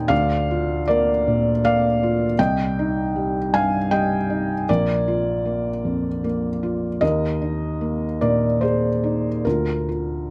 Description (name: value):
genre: neoclassical minimalist piano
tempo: 70-80 BPM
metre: 3/4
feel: rubato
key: unclear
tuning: A4 = 440 Hz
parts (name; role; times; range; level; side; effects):
- felt-muted upright piano; solo; 0.0-10.3 s; Bb1 to Ab5; -21 LUFS; equal; none
room: light reverb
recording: close, detailed microphones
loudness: -21 LUFS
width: mono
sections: 0.0-10.3 A section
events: none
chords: 0.1 Bb/D; 2.4 Cm; 4.7 Bb; 7.0 Eb5; 9.4 Bb/D